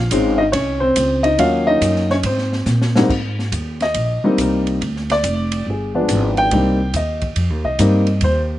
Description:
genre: jazz piano trio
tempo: 141 BPM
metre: 4/4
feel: swing 66% on 8ths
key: Ab major from 3.1 s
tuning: A4 = 440 Hz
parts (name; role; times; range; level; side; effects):
- warm baby grand piano; melody; 0.0-8.4 s; Ab2 to G5; -17 LUFS; left 1 dB; none
- upright bass; bass; 0.0-8.6 s; F1 to Bb2; -20 LUFS; equal; none
- open jazz drum kit; drums; 0.1-8.4 s; crash cymbal, hi-hat, kick drum, ride cymbal, snare drum; -26 LUFS; right 1 dB; none
room: little or no reverb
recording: recorded outdoors, with no room sound, nothing above 10.5 kHz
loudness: -15 LUFS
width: side -14 dB against mid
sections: 0.0-3.1 A section; 3.1-8.6 B section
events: drum fill 2.7-3.1; grand piano solo 3.1-8.6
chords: 0.0 Bbm11 (rootless); 1.4 Ebm7; 2.2 Abadd9; 3.1 Abmaj9; 4.8 Dm; 5.7 G7b9; 6.5 Cm7

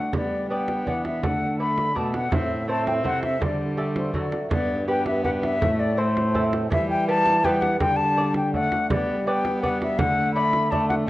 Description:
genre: classical, renaissance-style consort dance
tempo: 164 BPM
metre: 3/4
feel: straight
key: G major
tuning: A4 = 440 Hz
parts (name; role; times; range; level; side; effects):
- concert flute; melody; 0.0-11.1 s; C5 to B5; -24 LUFS; left 2 dB; none
- lute; accompaniment; 0.0-11.1 s; G2 to D5; -29 LUFS; right 1 dB; none
- warm viola; accompaniment; 0.1-11.1 s; F#3 to C4; -29 LUFS; equal; none
- clear trombone; bass; 0.1-11.1 s; G2 to G3; -29 LUFS; right 1 dB; none
- frame drum; percussion; 0.1-11.1 s; none; -29 LUFS; right 2 dB; none
room: moderate recital hall reverb, RT60 1.4 s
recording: worn, warbling old tape, cassette tape, warbly pitch drift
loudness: -21 LUFS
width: side -16 dB against mid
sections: 0.0-4.5 A section; 4.5-11.1 A section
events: none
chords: 0.1 G; 1.2 D; 2.3 Am; 3.4 Dsus4; 4.1 D; 4.5 G; 5.6 Am; 6.7 Em; 7.8 Dsus4; 8.5 D; 8.9 G; 10.0 D

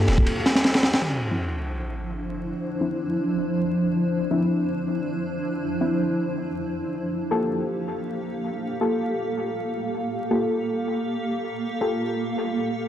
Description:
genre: drum and bass, jungle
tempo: free time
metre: none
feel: none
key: D minor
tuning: A4 = 441 Hz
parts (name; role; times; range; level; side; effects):
- deep mellow chord stab; stabs; 0.0-12.9 s; F3 to A4; -28 LUFS; left 1 dB; chorus, dub echo
- crunchy breakbeat drum kit; drums; 0.1-1.0 s; kick drum, ride cymbal, snare drum; -22 LUFS; equal; none
- granular cloud pad; sustained chords; 1.8-12.9 s; F3 to F5; -26 LUFS; right 1 dB; built-in reverb, vintage 12-bit sampler grit
- sub drop; sound effects; 1.0-2.5 s; none; -30 LUFS; equal; none
room: moderate echo chamber reverb, RT60 2.2 s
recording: dry, gritty hardware recording, transformer saturation, vinyl crackle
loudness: -23 LUFS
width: side -10 dB against mid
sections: 0.0-1.0 A section; 1.0-12.9 B section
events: drop 0.0-1.0; kick drops out 0.3-1.0; impact 1.0-2.5; filter sweep on ambient pad 1.0-12.9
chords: 0.0 Gm9; 1.0 Dm9; 7.0 Gm9

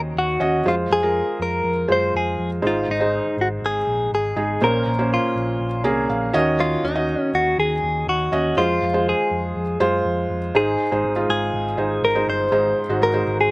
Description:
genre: piano-driven pop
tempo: 121 BPM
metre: 4/4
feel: straight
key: unclear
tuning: A4 = 440 Hz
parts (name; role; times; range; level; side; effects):
- felt-muted upright piano; accompaniment; 0.0-13.5 s; Ab2 to Bb5; -22 LUFS; right 1 dB; none
- picked electric bass; bass; 0.0-13.5 s; G1 to Gb2; -27 LUFS; equal; none
- direct-recorded clean electric guitar; melody; 0.2-13.5 s; Eb4 to C5; -21 LUFS; left 1 dB; phaser
room: little or no reverb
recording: recorded outdoors, with no room sound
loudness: -18 LUFS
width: side -23 dB against mid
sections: 0.0-10.5 A section; 10.5-13.5 B section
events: felt piano fill 5.6-6.6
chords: 0.0 Ebm7; 0.7 Fm; 2.6 Ab; 4.6 Bbmadd9; 6.3 Ebm7; 8.6 Fm; 10.5 Ab

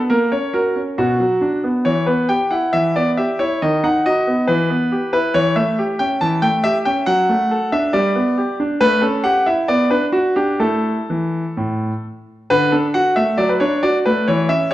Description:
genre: classical-period piano sonatina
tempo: 137 BPM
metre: 4/4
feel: rubato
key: D major from 5.3 s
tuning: A4 = 440 Hz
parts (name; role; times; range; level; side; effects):
- bright concert grand piano; solo; 0.0-14.7 s; A2 to A5; -15 LUFS; equal; none
room: wet recital hall reverb, RT60 1.5 s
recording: worn, warbling old tape, cassette tape, warbly pitch drift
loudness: -15 LUFS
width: side -14 dB against mid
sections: 0.0-12.5 A section; 12.5-14.7 B section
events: none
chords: 0.1 F#/A#; 1.0 Bm; 1.9 Em; 3.6 B/D#; 4.5 Em; 5.3 A7/E; 7.1 D/F#; 7.9 G; 8.8 A7; 9.7 Bm; 10.6 A5; 12.5 D; 13.4 D/F#

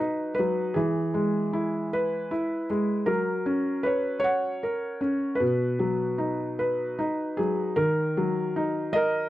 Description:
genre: children's music, lullaby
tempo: 52 BPM (dotted quarters)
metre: 6/8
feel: straight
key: B major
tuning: A4 = 441 Hz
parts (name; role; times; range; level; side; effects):
- felt-muted upright piano; solo; 0.0-9.3 s; B2 to F#5; -24 LUFS; equal; none
room: light reverb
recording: dry, close 1970s-style studio recording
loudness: -24 LUFS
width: side -15 dB against mid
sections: 0.0-7.8 A section; 7.8-9.3 B section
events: none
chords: 0.0 B; 0.8 E; 3.1 F#; 5.4 B; 7.8 D#m

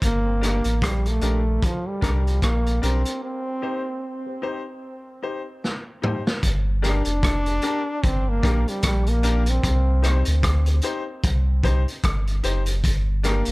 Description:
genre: roots reggae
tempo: 75 BPM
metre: 4/4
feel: swing 58% on 16ths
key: G minor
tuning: A4 = 441 Hz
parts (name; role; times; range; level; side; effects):
- clear trombone; melody; 0.0-13.5 s; F3 to D4; -27 LUFS; equal; tape echo
- warm sub bass; bass; 0.0-13.5 s; F1 to D2; -21 LUFS; equal; none
- crunchy breakbeat drum kit; drums; 0.0-13.5 s; hi-hat, kick drum, rim click, snare drum, toms; -24 LUFS; equal; none
- clear concert grand piano; stabs; 0.4-13.4 s; D4 to C5; -30 LUFS; left 4 dB; none
room: small room ambience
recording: echo-heavy mix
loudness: -20 LUFS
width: side -22 dB against mid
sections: 0.0-6.4 A section; 6.4-13.5 B section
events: break 3.2-6.4; drum fill 5.6-6.4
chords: 0.0 Gm; 3.2 Cm; 6.4 Gm; 9.6 Cm; 12.8 Gm

